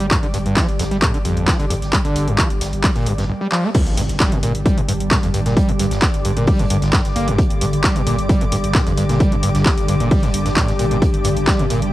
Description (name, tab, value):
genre	driving peak-time techno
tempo	132 BPM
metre	4/4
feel	straight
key	unclear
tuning	A4 = 440 Hz
part	screaming distorted acid line	riff	0.0-11.8 s	G1 to Bb3	-21 LUFS	equal	distortion, wide subtle chorus, sidechain pumping, cassette tape, analog delay
part	saturated sub bass	bass	0.0-11.9 s	G1	-24 LUFS	equal	tube saturation, sidechain pumping, low-pass filter
part	techno drum kit	drums	0.0-11.9 s	crash cymbal, handclaps, hi-hat	-23 LUFS	equal	overdrive, cassette tape, sidechain pumping on hats, sidechain pumping on cymbals
part	ethereal airy pad	texture	0.0-11.9 s	G3 to D6	-25 LUFS	equal	ensemble chorus, built-in reverb, sidechain pumping, cassette tape
part	electronic kick drum	drums	0.1-11.6 s	none	-17 LUFS	equal	overdrive, cassette tape
part	vintage drum kit	drums	0.1-11.8 s	hi-hat, snare drum	-36 LUFS	right 1 dB	none
part	swarming drone	drone	5.4-11.9 s	G2 to D3	-25 LUFS	equal	built-in reverb, sidechain pumping, cassette tape
part	impact	sound effects	3.7-5.6 s	none	-28 LUFS	equal	none
room	little or no reverb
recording	home recording on cassette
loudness	-15 LUFS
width	side -16 dB against mid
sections	0.0-3.7 A section; 3.7-11.9 B section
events	drum fill 3.5; band accent 3.5; drop 3.7-11.9; impact 3.7-5.6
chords	0.0 G5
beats	| 0.11 0.57 1.02 1.48 | 1.93 2.38 2.84 3.29 | 3.75 4.20 4.66 5.11 | 5.57 6.02 6.48 6.93 | 7.38 7.84 8.29 8.75 | 9.20 9.66 10.11 10.57 | 11.02 11.48